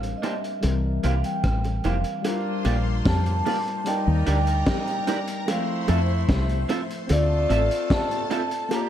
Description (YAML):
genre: lovers rock reggae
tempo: 74 BPM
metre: 4/4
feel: straight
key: unclear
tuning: A4 = 440 Hz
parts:
  - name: vibraphone with soft mallets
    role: melody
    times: 0.0-8.9 s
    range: D5 to Bb5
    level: -29 LUFS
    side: right 2 dB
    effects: tape echo
  - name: tine electric piano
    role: accompaniment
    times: 0.0-8.9 s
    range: E3 to E5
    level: -30 LUFS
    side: left 5 dB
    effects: medium stereo tremolo
  - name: deep dub fingered electric bass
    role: bass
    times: 0.0-7.7 s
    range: F1 to F2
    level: -22 LUFS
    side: equal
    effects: none
  - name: crunchy breakbeat drum kit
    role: drums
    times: 0.0-8.9 s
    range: hi-hat, kick drum, rim click, snare drum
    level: -28 LUFS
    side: equal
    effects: tape echo
  - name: electric guitar through a small old amp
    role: stabs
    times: 0.2-8.4 s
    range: Bb3 to E5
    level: -32 LUFS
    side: right 3 dB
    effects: analog chorus, tape echo
  - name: bongos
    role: percussion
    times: 0.2-8.9 s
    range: none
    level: -33 LUFS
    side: right 5 dB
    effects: none
  - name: bright saxophone section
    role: second line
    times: 2.2-8.9 s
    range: G3 to G4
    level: -36 LUFS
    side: left 2 dB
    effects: tape echo
  - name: phased string machine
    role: second line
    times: 2.2-8.9 s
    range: G4 to C6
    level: -36 LUFS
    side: left 1 dB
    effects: ensemble chorus, phaser, tape echo
room: moderate echo chamber reverb, RT60 2.5 s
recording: dark, warm production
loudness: -21 LUFS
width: side -10 dB against mid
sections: 0.0-2.3 A section; 2.3-8.9 B section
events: none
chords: 0.0 Bb69; 0.6 C7; 2.3 Bb6; 3.9 Ebmaj7; 5.5 Fmaj7; 7.1 Dm9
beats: 0.64 1.44 | 2.25 3.06 3.87 4.68 | 5.48 6.29 7.10 7.91 | 8.71